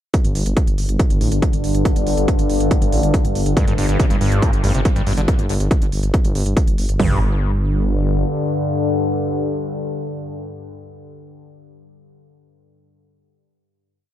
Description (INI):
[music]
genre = driving peak-time techno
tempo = 140 BPM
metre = 4/4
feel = straight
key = unclear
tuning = A4 = 441 Hz
[part]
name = deep dark ambient pad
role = drone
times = 0.9-10.3 s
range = G2 to D3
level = -22 LUFS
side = left 1 dB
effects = chorus, built-in reverb, sidechain pumping
[part]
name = electronic hi-hat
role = drums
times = 0.1-7.0 s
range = none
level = -32 LUFS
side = right 3 dB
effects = sidechain pumping on hats
[part]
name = techno drum kit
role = drums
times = 0.1-7.1 s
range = hi-hat, kick drum, toms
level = -17 LUFS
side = equal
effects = none
[part]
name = detuned saw bass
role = bass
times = 0.2-8.2 s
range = G1 to A1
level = -20 LUFS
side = equal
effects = sidechain pumping
[part]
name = screaming distorted acid line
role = riff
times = 3.6-7.2 s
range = G2 to D3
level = -22 LUFS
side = equal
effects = distortion, chorus, sidechain pumping, ping-pong delay
[sound]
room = light reverb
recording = none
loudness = -16 LUFS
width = side -12 dB against mid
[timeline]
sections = 0.1-7.0 groove; 7.0-10.4 final chord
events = none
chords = 0.1 G5